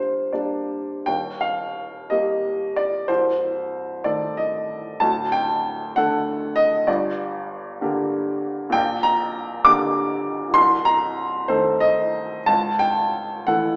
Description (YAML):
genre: classical, romantic character piece for solo piano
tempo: 54-67 BPM (dotted quarters)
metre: 6/8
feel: rubato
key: G minor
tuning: A4 = 441 Hz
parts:
  - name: clear upright piano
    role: solo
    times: 0.0-13.8 s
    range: C1 to D6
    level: -22 LUFS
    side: equal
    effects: none
room: wet large studio reverb, RT60 1.2 s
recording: heard from further back in the room, small speaker sound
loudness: -22 LUFS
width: mono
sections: 0.0-1.1 A section; 1.1-13.8 B section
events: none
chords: 0.0 Gm; 1.1 Eb; 3.1 Adim/C; 5.0 D; 6.9 Gm; 8.7 Gm/Bb; 10.6 Adim/C; 12.5 A7/C#